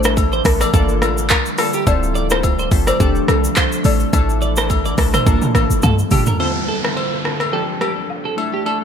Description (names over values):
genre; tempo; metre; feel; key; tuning
afrobeats; 106 BPM; 4/4; swing 55% on 16ths; D minor; A4 = 438 Hz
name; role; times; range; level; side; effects
buzzing marimba with soft mallets; melody; 0.0-4.7 s; A4 to D5; -25 LUFS; left 1 dB; ping-pong delay
glassy digital keys; accompaniment; 0.0-8.8 s; D3 to A4; -23 LUFS; left 1 dB; chorus
deep dark ambient pad; sustained chords; 0.0-6.4 s; C3 to F4; -24 LUFS; left 1 dB; chorus, built-in reverb
clean electric guitar; riff; 0.0-8.8 s; G4 to D5; -24 LUFS; right 6 dB; analog chorus, ping-pong delay
clean 808-style bass; bass; 0.0-6.2 s; D1 to G2; -18 LUFS; equal; none
glitchy drum kit; drums; 0.0-8.0 s; handclaps, hi-hat, kick drum, rim click, shaker, toms; -18 LUFS; equal; overdrive, gated reverb
agogo bells and woodblock; percussion; 0.2-8.8 s; none; -26 LUFS; left 10 dB; none
downlifter; sound effects; 6.4-8.8 s; none; -26 LUFS; right 2 dB; none
room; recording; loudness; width
light reverb, digital ambience; bright 1980s-style digital production; -14 LUFS; side -7 dB against mid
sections
0.0-6.4 A section; 6.4-8.8 B section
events
drum fill 5.8-6.4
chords
0.0 Asus4; 0.7 Gm7; 1.9 Dm7; 3.0 F6; 3.8 Asus4; 5.3 Gm7; 6.4 Dm7; 7.5 F6